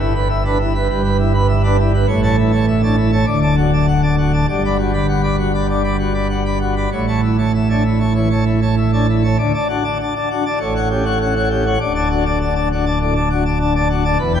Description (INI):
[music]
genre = classical, organ toccata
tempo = 100 BPM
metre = 4/4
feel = straight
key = D major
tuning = A4 = 439 Hz
[part]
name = pipe organ, plenum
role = solo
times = 0.0-14.4 s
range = D1 to B5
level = -14 LUFS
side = equal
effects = none
[sound]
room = wet church reverb, RT60 3.8 s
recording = dark, warm production, lossy compression artefacts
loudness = -14 LUFS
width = side -8 dB against mid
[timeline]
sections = 0.0-9.4 A section; 9.4-14.4 B section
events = none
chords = 0.0 Em/G; 2.1 A; 3.3 D; 4.5 Gmaj7; 6.9 A; 9.4 D; 10.6 A6; 11.8 D